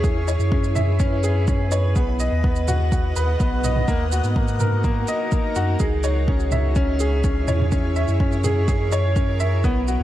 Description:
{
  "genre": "piano and strings electronica",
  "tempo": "125 BPM",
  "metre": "4/4",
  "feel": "straight",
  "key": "C# dorian",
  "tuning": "A4 = 441 Hz",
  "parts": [
    { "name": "granular cloud pad", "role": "sustained chords", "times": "0.0-10.0 s", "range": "B3 to F#5", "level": "-29 LUFS", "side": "right 2 dB", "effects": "built-in reverb" },
    { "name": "warm upright piano", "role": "riff", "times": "0.0-10.0 s", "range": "A#3 to E5", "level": "-24 LUFS", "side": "left 1 dB", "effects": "digital delay" },
    { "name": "warm sub bass", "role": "bass", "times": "0.0-10.0 s", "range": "B1 to G#2", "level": "-22 LUFS", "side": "equal", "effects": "sidechain pumping" },
    { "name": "electronic kick drum", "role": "drums", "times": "0.0-9.7 s", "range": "none", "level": "-22 LUFS", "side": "equal", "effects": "none" },
    { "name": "electronic shaker and toms", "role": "drums", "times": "0.0-10.0 s", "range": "none", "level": "-28 LUFS", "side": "right 1 dB", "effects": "none" }
  ],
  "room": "little or no reverb",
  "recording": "dark, warm production",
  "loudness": "-18 LUFS",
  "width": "side -13 dB against mid",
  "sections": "0.0-10.0 A section",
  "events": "none",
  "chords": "0.0 C#m; 2.0 B; 3.9 D#m; 5.8 C#m",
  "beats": "| 0.04 0.52 1.00 1.48 | 1.96 2.44 2.92 3.40 | 3.88 4.36 4.84 5.32 | 5.80 6.28 6.76 7.24 | 7.72 8.20 8.68 9.16 | 9.64"
}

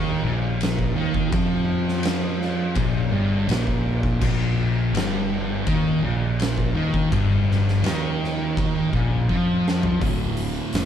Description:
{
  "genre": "stoner and doom metal",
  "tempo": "83 BPM",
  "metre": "4/4",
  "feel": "straight",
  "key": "unclear",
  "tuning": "A4 = 444 Hz",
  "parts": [
    { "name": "thick fuzz guitar", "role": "riff", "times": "0.0-10.9 s", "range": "D2 to F3", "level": "-27 LUFS", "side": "left 6 dB", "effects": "distortion" },
    { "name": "thick fuzz guitar", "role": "riff", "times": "0.0-10.9 s", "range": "D2 to F3", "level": "-26 LUFS", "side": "right 5 dB", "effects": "distortion" },
    { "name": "thick fuzz guitar", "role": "riff", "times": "0.0-10.0 s", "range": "G2 to F3", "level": "-29 LUFS", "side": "left 1 dB", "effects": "distortion" },
    { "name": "fuzz fingered electric bass", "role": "bass", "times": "0.0-10.9 s", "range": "D1 to F2", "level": "-27 LUFS", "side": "equal", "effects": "overdrive" },
    { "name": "oversized low-tuned drum kit", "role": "drums", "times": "0.6-10.9 s", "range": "crash cymbal, hi-hat, kick drum, ride cymbal, snare drum, toms", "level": "-26 LUFS", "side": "equal", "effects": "none" }
  ],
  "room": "moderate large studio reverb, RT60 1.3 s",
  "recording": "band playing live in one room",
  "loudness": "-20 LUFS",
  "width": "side -9 dB against mid",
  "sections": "0.0-10.0 A section",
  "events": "drum fill 9.3-10.0",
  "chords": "0.0 Bb5; 10.0 Dm",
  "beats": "0.60 | 1.33 2.05 2.77 3.50 | 4.22 4.95 5.67 6.39 | 7.12 7.84 8.57 9.29 | 10.02 10.74"
}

